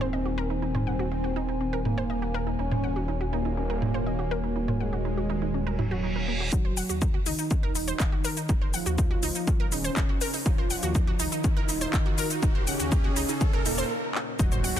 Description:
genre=melodic techno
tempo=122 BPM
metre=4/4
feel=straight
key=Eb dorian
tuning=A4 = 441 Hz
part: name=soft supersaw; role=melody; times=0.0-14.8 s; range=Bb2 to Gb4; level=-32 LUFS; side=equal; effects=sidechain pumping, low-pass filter, digital delay
part: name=dark analog pad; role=sustained chords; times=0.0-14.8 s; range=Eb4 to Db6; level=-40 LUFS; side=right 3 dB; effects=chorus, sidechain pumping
part: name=analog pluck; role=arpeggios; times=0.0-14.8 s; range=Bb3 to Gb6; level=-34 LUFS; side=right 2 dB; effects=chorus, sidechain pumping, digital delay
part: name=swelling detuned saw bass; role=bass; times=0.0-14.8 s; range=Eb1 to Eb2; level=-32 LUFS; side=equal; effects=sidechain pumping
part: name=techno drum kit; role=drums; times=0.7-14.8 s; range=handclaps, hi-hat, shaker, toms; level=-31 LUFS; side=equal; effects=overdrive, sidechain pumping on toms, low-pass filter on toms, sidechain pumping on perc, low-pass filter on perc, sidechain pumping on hats, low-pass filter on hats, low-pass filter on snare
part: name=reverse cymbal, riser and impact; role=sound effects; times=5.8-14.8 s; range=none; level=-36 LUFS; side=right 2 dB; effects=none
part: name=electronic kick drum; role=drums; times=6.5-14.5 s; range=none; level=-25 LUFS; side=equal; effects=overdrive
room=digital ambience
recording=dense, heavily limited modern master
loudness=-24 LUFS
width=side -10 dB against mid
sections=0.0-6.5 A section; 6.5-14.4 B section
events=filter sweep on supersaw synth 0.0-6.5, 6.5-14.4; reverse cymbal 5.8-6.5; build-up 6.5-14.4; riser 6.5-13.9; stop 13.9-14.4; drum fill 14.1; impact 14.4-14.8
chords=0.0 Abadd9/Eb; 2.6 Gbadd9/Eb; 6.5 Eb7(no3)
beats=0.13 | 0.62 1.11 1.61 2.10 | 2.59 3.08 3.57 4.07 | 4.56 5.05 5.54 6.03 | 6.53 7.02 7.51 8.00 | 8.49 8.98 9.47 9.97 | 10.46 10.95 11.44 11.93 | 12.43 12.92 13.41 13.90 | 14.39

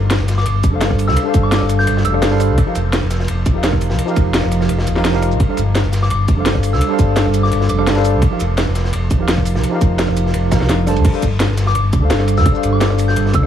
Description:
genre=liquid drum and bass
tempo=170 BPM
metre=4/4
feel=straight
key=unclear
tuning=A4 = 440 Hz
part: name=sub bass with octave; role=bass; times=0.0-13.5 s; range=Eb1 to G2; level=-16 LUFS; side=left 1 dB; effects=none
part: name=crunchy breakbeat drum kit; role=drums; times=0.1-13.4 s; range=ride cymbal, snare drum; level=-27 LUFS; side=equal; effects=high-pass filter on cymbals, high-pass filter on snare, high-pass filter on room
part: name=drum and bass drum kit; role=drums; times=0.1-13.5 s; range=crash cymbal, hi-hat, rim click, shaker, snare drum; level=-22 LUFS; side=equal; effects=none
part: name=soft synth bell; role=melody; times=0.4-2.3, 6.0-7.8, 11.7-13.5 s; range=D6 to G6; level=-24 LUFS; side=left 2 dB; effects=chorus, phaser, tape echo
part: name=electronic kick drum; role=drums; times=0.6-13.4 s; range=none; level=-16 LUFS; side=equal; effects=none
part: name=tine electric piano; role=accompaniment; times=0.7-13.5 s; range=F3 to A5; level=-19 LUFS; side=right 1 dB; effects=slow stereo tremolo, tape echo
room=little or no reverb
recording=none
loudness=-13 LUFS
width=side -10 dB against mid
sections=0.0-11.0 A section; 11.0-13.5 A section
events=drop 0.0-11.0, 11.0-13.5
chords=0.0 G9sus4; 2.6 F9sus4; 5.4 G9sus4; 8.2 F9sus4; 11.0 G9sus4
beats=0.11 0.46 0.81 | 1.17 1.52 1.87 2.22 | 2.58 2.93 3.28 3.64 | 3.99 4.34 4.70 5.05 | 5.40 5.75 6.11 6.46 | 6.81 7.17 7.52 7.87 | 8.22 8.58 8.93 9.28 | 9.64 9.99 10.34 10.70 | 11.05 11.40 11.75 12.11 | 12.46 12.81 13.16

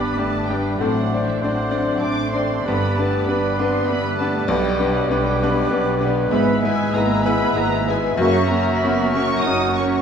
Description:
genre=classical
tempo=97 BPM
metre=3/4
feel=rubato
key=G major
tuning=A4 = 440 Hz
part: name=bright grand piano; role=melody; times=0.0-10.0 s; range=B1 to D5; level=-21 LUFS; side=left 3 dB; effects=none
part: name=muted symphonic violin section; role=melody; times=0.0-10.0 s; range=E5 to D#6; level=-28 LUFS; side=left 1 dB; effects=none
part: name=muted symphonic violin section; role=second line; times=0.0-10.0 s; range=A4 to E5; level=-32 LUFS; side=left 2 dB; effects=none
part: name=small flute group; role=second line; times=0.0-10.0 s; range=C#6 to E6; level=-30 LUFS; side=right 2 dB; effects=none
part: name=warm clarinet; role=second line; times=0.0-10.0 s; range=B4 to G#5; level=-31 LUFS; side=left 1 dB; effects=none
part: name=warm oboe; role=second line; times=0.0-10.0 s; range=A#4 to C5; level=-30 LUFS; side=right 2 dB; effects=none
part: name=muted symphonic viola section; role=accompaniment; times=0.0-10.0 s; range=F#3 to G#4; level=-30 LUFS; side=right 2 dB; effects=none
part: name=warm bassoon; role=accompaniment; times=0.0-10.0 s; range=F#3 to A3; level=-29 LUFS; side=right 2 dB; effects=none
part: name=muted studio cello section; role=bass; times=0.0-10.0 s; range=E3 to D#4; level=-27 LUFS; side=right 5 dB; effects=none
part: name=muted symphonic double bass section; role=bass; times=0.0-10.0 s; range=F#1 to B1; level=-27 LUFS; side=right 4 dB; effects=none
part: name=dark trombone section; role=sustained chords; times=0.8-8.4 s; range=C#3 to A3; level=-30 LUFS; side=right 5 dB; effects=none
part: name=mellow French horn section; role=sustained chords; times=0.8-8.4 s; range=A#3 to B4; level=-26 LUFS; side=left 4 dB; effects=none
room=moderate scoring stage reverb, RT60 1.8 s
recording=none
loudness=-17 LUFS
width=side -7 dB against mid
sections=0.0-10.0 A section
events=none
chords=0.0 G; 0.8 D7/A; 2.7 G; 4.5 G/B; 6.3 E/G#; 8.2 F#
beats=0.17 | 0.80 1.41 2.03 | 2.65 3.27 3.87 | 4.48 5.09 5.69 | 6.31 6.93 7.55 | 8.18 8.81 9.44

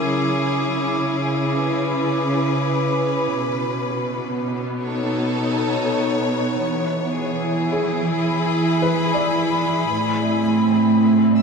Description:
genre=ambient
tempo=55 BPM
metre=3/4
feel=straight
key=unclear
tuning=A4 = 441 Hz
part: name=rich studio string section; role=sustained chords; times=0.0-11.4 s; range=A2 to E6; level=-18 LUFS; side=equal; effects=shimmer reverb
part: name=glass harmonica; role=texture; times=0.0-3.4 s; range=D6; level=-32 LUFS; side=left 2 dB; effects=stereo widening, shimmer reverb
part: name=felt-muted upright piano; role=arpeggios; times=3.9-11.4 s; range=F#4 to D5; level=-29 LUFS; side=left 2 dB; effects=diffuse ambient delay, shimmer reverb
room=wet cathedral reverb, RT60 6.1 s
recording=none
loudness=-18 LUFS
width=side -5 dB against mid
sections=0.0-3.4 A section; 3.4-11.4 B section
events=fade-in on felt piano 3.4-11.4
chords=0.1 C#m7; 3.4 B7; 6.6 E; 9.9 Amadd9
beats=| 0.08 1.17 2.26 | 3.35 4.44 5.53 | 6.62 7.71 8.80 | 9.90 10.99

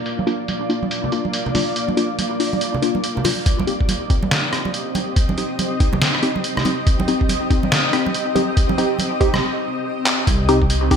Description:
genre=deep dubstep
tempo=141 BPM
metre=4/4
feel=swing 62% on 16ths, half-time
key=C minor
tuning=A4 = 440 Hz
part: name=granular cloud pad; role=sustained chords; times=0.0-11.0 s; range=G3 to Eb5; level=-24 LUFS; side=left 1 dB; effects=built-in reverb, analog chorus
part: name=trip hop sampler-style drum kit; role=drums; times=0.1-11.0 s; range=handclaps, hi-hat, rim click, snare drum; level=-23 LUFS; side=equal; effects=gated reverb
part: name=congas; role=percussion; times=0.2-9.4 s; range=none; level=-26 LUFS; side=right 4 dB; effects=dub echo
part: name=filtered dub chord stab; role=stabs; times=0.3-11.0 s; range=Bb3 to G4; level=-23 LUFS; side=left 2 dB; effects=phaser, dub echo
part: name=electronic kick drum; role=drums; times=3.5-11.0 s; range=none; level=-18 LUFS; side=equal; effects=none
part: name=dark detuned saw bass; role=bass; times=10.3-11.0 s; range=C2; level=-19 LUFS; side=equal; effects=none
room=light reverb, digital ambience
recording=bright 1980s-style digital production, low-pass filter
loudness=-17 LUFS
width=side -7 dB against mid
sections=0.0-3.5 A section; 3.5-10.3 B section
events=filter sweep 0.0-3.5; build-up 3.5-10.3; filter sweep on synth stab 3.5-10.3; break 9.4-10.3; drum fill 10.1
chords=0.0 Bb; 3.5 Cm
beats=| 0.06 0.48 0.91 1.33 | 1.76 2.19 2.61 3.04 | 3.46 3.89 4.31 4.74 | 5.16 5.59 6.01 6.44 | 6.87 7.29 7.72 8.14 | 8.57 8.99 9.42 9.85 | 10.27 10.70

